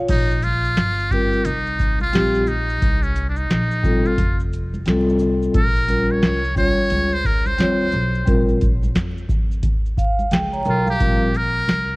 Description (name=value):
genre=hip hop, jazz-hop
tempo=88 BPM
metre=4/4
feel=swing 62% on 16ths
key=Bb dorian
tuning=A4 = 440 Hz
part: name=vibraphone with soft mallets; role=accompaniment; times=0.0-11.3 s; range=G3 to Bb5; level=-22 LUFS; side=left 1 dB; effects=cassette tape
part: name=trumpet with metal mute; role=melody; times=0.1-12.0 s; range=Db4 to Db5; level=-23 LUFS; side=equal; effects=cassette tape
part: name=upright bass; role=bass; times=0.1-12.0 s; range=F1 to F2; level=-24 LUFS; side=equal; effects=none
part: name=booming analog drum machine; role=drums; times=0.1-11.9 s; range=crash cymbal, hi-hat, kick drum, shaker, snare drum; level=-21 LUFS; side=equal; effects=vintage 12-bit sampler grit, cassette tape
part: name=maracas and congas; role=percussion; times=0.1-11.0 s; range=none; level=-34 LUFS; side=right 1 dB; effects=none
room=light reverb, small room ambience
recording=home recording on cassette, vinyl crackle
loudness=-17 LUFS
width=side -25 dB against mid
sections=0.1-11.0 A section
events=muted trumpet solo 0.1-11.0; vibraphone fill 9.6-11.0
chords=0.1 Bbsus2; 2.8 Cm7; 4.2 F; 5.5 Bbm69; 11.0 Bbsus2